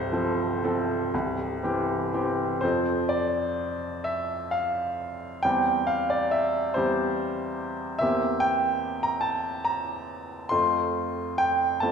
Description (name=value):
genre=classical, romantic nocturne for solo piano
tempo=38-49 BPM (dotted quarters)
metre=12/8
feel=rubato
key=F major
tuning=A4 = 440 Hz
part: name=clear baby grand piano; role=solo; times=0.0-11.9 s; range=C1 to C6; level=-24 LUFS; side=equal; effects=none
room=wet recital hall reverb, RT60 1.5 s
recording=recorded in a church or concert hall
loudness=-24 LUFS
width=side -6 dB against mid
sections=0.0-2.6 A section; 2.6-11.9 B section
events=none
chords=0.0 F/C; 1.1 C; 2.6 F; 5.4 C/E; 8.0 C7/E; 10.5 F